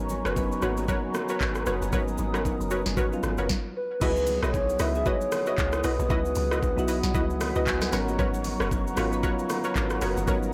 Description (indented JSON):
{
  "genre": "amapiano",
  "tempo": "115 BPM",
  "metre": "4/4",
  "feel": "swing 58% on 16ths",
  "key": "C# minor",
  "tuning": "A4 = 440 Hz",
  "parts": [
    { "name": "soft electric-piano-like synth keys", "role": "accompaniment", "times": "0.0-10.5 s", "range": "F#3 to B5", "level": "-34 LUFS", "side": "equal", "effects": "chorus" },
    { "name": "mellow large flute ensemble", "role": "sustained chords", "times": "0.0-10.5 s", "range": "C#5 to D#6", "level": "-40 LUFS", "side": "equal", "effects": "none" },
    { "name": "deep log drum bass", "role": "bass", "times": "0.0-10.5 s", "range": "F#1 to C#2", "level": "-33 LUFS", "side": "equal", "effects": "none" },
    { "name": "afro-pop drum kit", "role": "drums", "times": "0.1-10.5 s", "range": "crash cymbal, handclaps, hi-hat, kick drum, rim click, shaker, snare drum", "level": "-32 LUFS", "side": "equal", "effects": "none" },
    { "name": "bongos and congas", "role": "percussion", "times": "0.1-10.4 s", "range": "none", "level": "-41 LUFS", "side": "equal", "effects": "none" },
    { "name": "punchy chord stab", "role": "stabs", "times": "0.3-10.4 s", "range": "E4 to D#5", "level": "-34 LUFS", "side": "equal", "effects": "chorus, delay" },
    { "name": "hollow clarinet-like synth lead", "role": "melody", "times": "3.8-7.4 s", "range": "B4 to E5", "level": "-31 LUFS", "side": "equal", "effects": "chorus" }
  ],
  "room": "light reverb",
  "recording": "blown-out, overdriven recording, overdrive",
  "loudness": "-26 LUFS",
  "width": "mono",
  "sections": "0.0-4.0 A section; 4.0-10.5 B section",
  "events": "stop 3.5-4.0; drop 4.0-10.5; synth keys fill 7.1-8.2",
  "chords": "0.0 G#m11; 4.0 C#m11; 7.9 G#m11"
}